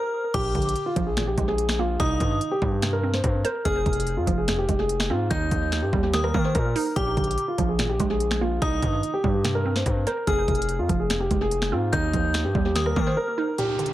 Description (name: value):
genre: hip hop, trap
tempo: 145 BPM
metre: 4/4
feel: half-time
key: unclear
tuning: A4 = 440 Hz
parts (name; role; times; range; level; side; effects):
- dark concert grand piano; melody; 0.0-13.9 s; Eb4 to C5; -26 LUFS; equal; low-pass filter, analog delay
- metallic FM bell; second line; 0.0-13.5 s; D6 to G6; -33 LUFS; left 3 dB; chorus, analog delay
- hollow square pluck; accompaniment; 0.3-13.9 s; F2 to C5; -30 LUFS; right 5 dB; chorus, low-pass filter, analog delay
- distorted 808-style bass; bass; 0.3-13.2 s; F1 to Eb3; -27 LUFS; equal; distortion
- trap drum kit; drums; 0.3-13.9 s; crash cymbal, finger snaps, hi-hat, kick drum, rim click, snare drum; -27 LUFS; equal; overdrive, vintage 12-bit sampler grit, analog delay
- downlifter; sound effects; 13.6-13.9 s; none; -31 LUFS; right 1 dB; none
room: light reverb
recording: echo-heavy mix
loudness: -21 LUFS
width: side -14 dB against mid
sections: 0.3-13.6 A section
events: break 0.0-0.3, 13.2-13.6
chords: 0.3 Bb7; 2.0 Cm; 3.7 Fm; 5.3 Ebadd9; 7.0 Bb7; 8.6 Cm; 10.3 Fm; 11.9 Ebadd9